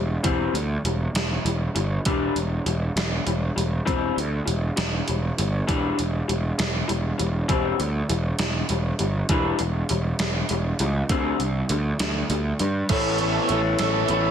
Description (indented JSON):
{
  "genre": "indie rock",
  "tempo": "66 BPM (dotted quarters)",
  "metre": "6/8",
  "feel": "straight",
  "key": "E minor",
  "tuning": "A4 = 440 Hz",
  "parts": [
    { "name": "electric guitar through a small old amp", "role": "riff", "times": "0.0-14.3 s", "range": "D3 to C#5", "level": "-27 LUFS", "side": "left 4 dB", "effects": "wide subtle chorus" },
    { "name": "fuzz picked electric bass", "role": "bass", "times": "0.0-14.3 s", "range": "E1 to G2", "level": "-25 LUFS", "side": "right 1 dB", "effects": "overdrive" },
    { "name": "gated 80s digital drum machine", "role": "drums", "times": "0.2-14.2 s", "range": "crash cymbal, hi-hat, kick drum, snare drum", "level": "-28 LUFS", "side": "right 1 dB", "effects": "gated reverb, gated reverb snare" },
    { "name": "overdriven electric guitar", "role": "riff", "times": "12.9-14.3 s", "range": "E3 to A4", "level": "-26 LUFS", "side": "right 16 dB", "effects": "ensemble chorus" }
  ],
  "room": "digital ambience",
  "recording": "heavily compressed radio sound, multiband compression",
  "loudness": "-21 LUFS",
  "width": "side -8 dB against mid",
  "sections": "0.0-12.9 A section; 12.9-14.3 B section",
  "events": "none",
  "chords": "0.2 C/E; 2.1 Em7; 3.9 C/E; 5.7 Em7; 7.5 C/E; 9.3 Em7; 11.1 D7sus4; 12.9 Aadd9"
}